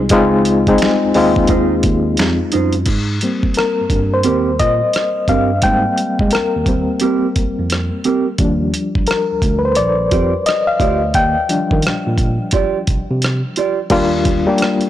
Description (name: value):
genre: R&B, neo-soul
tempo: 87 BPM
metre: 4/4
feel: swing 64% on 16ths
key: unclear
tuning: A4 = 435 Hz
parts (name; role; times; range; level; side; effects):
- bright reed electric piano; accompaniment; 0.0-14.9 s; F3 to G5; -16 LUFS; left 2 dB; fast tremolo
- overdriven tine electric piano; bass; 0.0-14.4 s; Bb1 to Ab3; -19 LUFS; right 1 dB; transformer saturation
- dusty soul sampler-style drum kit; drums; 0.1-14.9 s; crash cymbal, finger snaps, hi-hat, kick drum, rim click, snare drum; -19 LUFS; right 1 dB; overdrive
- mellow electric guitar; second line; 1.5-13.8 s; C4 to D5; -19 LUFS; right 6 dB; none
room: light reverb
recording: blown-out, overdriven recording, overdrive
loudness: -13 LUFS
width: side -12 dB against mid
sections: 0.0-2.9 A section; 2.9-13.9 B section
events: reed electric piano solo 2.9-13.9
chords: 0.0 Dbmaj9; 2.9 Abmaj9; 8.4 Ebmaj9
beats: | 0.11 0.80 1.49 2.18 | 2.87 3.56 4.25 4.94 | 5.63 6.32 7.01 7.70 | 8.38 9.07 9.76 10.45 | 11.14 11.83 12.52 13.21 | 13.90 14.59